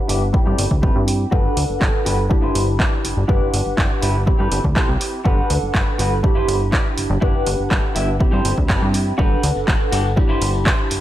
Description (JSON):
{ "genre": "filtered disco house", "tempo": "122 BPM", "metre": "4/4", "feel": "straight", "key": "G major", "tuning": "A4 = 436 Hz", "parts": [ { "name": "funky polysynth comp", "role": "accompaniment", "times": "0.0-11.0 s", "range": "C4 to B5", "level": "-23 LUFS", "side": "right 1 dB", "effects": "chorus, phaser, vintage 12-bit sampler grit, sidechain pumping, low-pass filter" }, { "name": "electric guitar at the edge of break-up", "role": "riff", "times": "0.1-10.9 s", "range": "E4 to E5", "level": "-27 LUFS", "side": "left 1 dB", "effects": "sidechain pumping, low-pass filter, tape echo" }, { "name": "plucky analog bass", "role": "bass", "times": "0.1-11.0 s", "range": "G1 to G2", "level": "-21 LUFS", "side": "equal", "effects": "sidechain pumping, low-pass filter" }, { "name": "punchy analog drum machine", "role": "drums", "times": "0.1-11.0 s", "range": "handclaps, hi-hat", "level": "-24 LUFS", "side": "right 1 dB", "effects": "sidechain pumping on hats" }, { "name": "electronic kick drum", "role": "drums", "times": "0.3-10.8 s", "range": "none", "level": "-19 LUFS", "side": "equal", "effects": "none" }, { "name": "tambourine", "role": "percussion", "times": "9.2-11.0 s", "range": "none", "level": "-41 LUFS", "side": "left 4 dB", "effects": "none" } ], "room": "light reverb", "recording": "echo-heavy mix", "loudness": "-16 LUFS", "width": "side -13 dB against mid", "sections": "0.0-11.0 A section", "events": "filter sweep 0.0-11.0", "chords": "0.3 Am7/G; 1.3 Gmaj7; 2.3 Cmaj7/G; 3.3 Em7/G; 4.3 Am7/G; 5.3 Gmaj7; 6.2 Cmaj7/G; 7.2 Em7/G; 8.2 Am7/G; 9.2 Gmaj7; 10.2 Cmaj7/G", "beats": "0.34 0.83 | 1.32 1.81 2.31 2.80 | 3.29 3.78 4.27 4.76 | 5.26 5.75 6.24 6.73 | 7.22 7.71 8.21 8.70 | 9.19 9.68 10.17 10.67" }